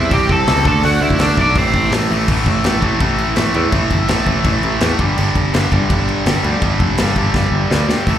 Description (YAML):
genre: punk rock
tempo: 166 BPM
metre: 4/4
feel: straight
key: unclear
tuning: A4 = 440 Hz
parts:
  - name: crunchy overdriven guitar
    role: melody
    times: 0.0-1.9 s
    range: C4 to A5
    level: -17 LUFS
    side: right 1 dB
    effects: slapback echo
  - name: distorted electric guitar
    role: riff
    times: 0.0-8.2 s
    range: G2 to D4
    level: -17 LUFS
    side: equal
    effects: overdrive, slapback echo
  - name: modern bright picked electric bass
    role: bass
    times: 0.0-8.2 s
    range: F1 to E2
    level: -18 LUFS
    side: equal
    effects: none
  - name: big rock drum kit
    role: drums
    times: 0.1-8.2 s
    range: crash cymbal, hi-hat, kick drum, snare drum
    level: -19 LUFS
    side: equal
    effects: none
room: little or no reverb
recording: live gig heard through the venue's PA, club reverb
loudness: -13 LUFS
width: side -10 dB against mid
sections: 0.0-2.3 A section; 2.3-8.1 B section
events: drum fill 7.3-8.1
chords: 0.0 C; 0.7 D; 1.6 Am; 2.3 A5; 5.0 G5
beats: 0.11 0.47 | 0.83 1.19 1.55 1.92 | 2.28 2.64 3.00 3.36 | 3.73 4.09 4.45 4.81 | 5.17 5.54 5.90 6.26 | 6.62 6.98 7.34 7.71 | 8.07